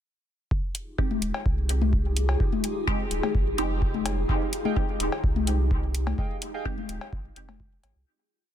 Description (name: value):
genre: dub techno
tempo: 127 BPM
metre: 4/4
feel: straight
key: F minor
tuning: A4 = 441 Hz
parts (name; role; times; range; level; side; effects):
- granular cloud pad; sustained chords; 1.3-8.0 s; Eb4 to Ab4; -33 LUFS; left 1 dB; built-in reverb, sidechain pumping
- pure sine sub bass; bass; 0.5-8.0 s; Eb1 to C2; -27 LUFS; equal; sidechain pumping
- electronic kick drum; drums; 0.5-7.7 s; none; -27 LUFS; equal; none
- electronic hi-hat; drums; 0.7-7.9 s; none; -32 LUFS; equal; none
- filtered dub chord stab; stabs; 1.0-6.8 s; Ab3 to G4; -33 LUFS; right 2 dB; phaser, sidechain pumping, dub echo
- electronic toms and cowbell; percussion; 1.1-7.9 s; none; -32 LUFS; left 9 dB; sidechain pumping on toms, sidechain pumping on perc, dub echo
- warbly lo-fi synth keys; riff; 4.3-6.7 s; Ab4 to G5; -38 LUFS; right 5 dB; chorus, sidechain pumping, dub echo
room: little or no reverb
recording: dense, heavily limited modern master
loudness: -24 LUFS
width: side -10 dB against mid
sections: 0.5-8.1 groove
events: fade-out 5.6-8.1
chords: 0.5 Fm9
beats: | 0.51 0.98 1.46 1.93 | 2.40 2.88 3.35 3.82 | 4.29 4.76 5.24 5.71 | 6.18 6.65 7.13 7.60